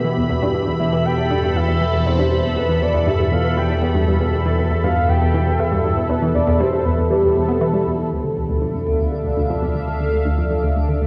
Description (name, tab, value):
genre	ambient, sequencer-driven space music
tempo	119 BPM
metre	4/4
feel	straight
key	unclear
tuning	A4 = 440 Hz
part	sweeping resonant pad	sustained chords	0.0-11.1 s	B2 to B5	-25 LUFS	equal	chorus
part	tight sequenced synth	riff	0.0-11.1 s	D2 to B3	-23 LUFS	equal	chorus, tape echo
part	round analog bass	bass	0.0-11.1 s	D2 to E2	-25 LUFS	equal	none
part	soft octave-layered synth lead	melody	0.8-7.8 s	G4 to G5	-25 LUFS	equal	chorus, phaser, tape echo
part	twinkling granular texture	texture	8.4-11.1 s	D5	-50 LUFS	equal	built-in reverb
room	wet plate reverb, RT60 3.5 s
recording	worn, warbling old tape, cassette tape, warbly pitch drift, small room ambience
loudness	-19 LUFS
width	mono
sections	0.0-8.1 A section; 8.1-11.1 B section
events	none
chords	0.0 Em; 8.1 Dmadd9